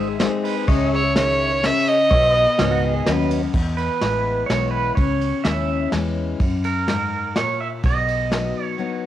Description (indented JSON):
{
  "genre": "honky-tonk and classic country",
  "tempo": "126 BPM",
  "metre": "3/4",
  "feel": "straight",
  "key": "E major",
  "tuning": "A4 = 437 Hz",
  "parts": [
    { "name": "pedal steel guitar", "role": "second line", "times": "0.0-9.0 s", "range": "C#4 to E5", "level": "-25 LUFS", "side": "right 6 dB", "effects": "none" },
    { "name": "mellow tonewheel organ", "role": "accompaniment", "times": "0.0-3.4 s", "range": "F#4 to E5", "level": "-28 LUFS", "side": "right 8 dB", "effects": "slow rotary speaker" },
    { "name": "picked steel-string acoustic guitar", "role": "accompaniment", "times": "0.0-9.1 s", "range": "E2 to G#4", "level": "-24 LUFS", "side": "left 7 dB", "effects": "none" },
    { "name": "pedal steel guitar", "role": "sustained chords", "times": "0.0-3.5 s", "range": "B4 to E5", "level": "-30 LUFS", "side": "left 5 dB", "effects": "lush chorus" },
    { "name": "vintage muted fingered electric bass", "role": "bass", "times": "0.0-8.5 s", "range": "G#1 to F#2", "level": "-25 LUFS", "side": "right 1 dB", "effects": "none" },
    { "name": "soft brush drum kit", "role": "drums", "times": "0.2-8.4 s", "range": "crash cymbal, kick drum, ride cymbal, snare drum", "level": "-24 LUFS", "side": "equal", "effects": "cassette tape" },
    { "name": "clear fiddle", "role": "melody", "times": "0.9-3.1 s", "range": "C#5 to E5", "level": "-19 LUFS", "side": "right 1 dB", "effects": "analog delay" }
  ],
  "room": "moderate spring reverb, RT60 1.2 s, small room ambience",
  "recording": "home recording on cassette",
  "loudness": "-18 LUFS",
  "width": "side -12 dB against mid",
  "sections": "0.0-3.5 A section; 3.5-9.1 B section",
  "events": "pedal steel guitar solo 3.5-9.1",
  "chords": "0.0 G#; 0.7 C#m; 2.1 B; 3.5 E; 5.0 C#m; 6.4 F#; 7.8 B"
}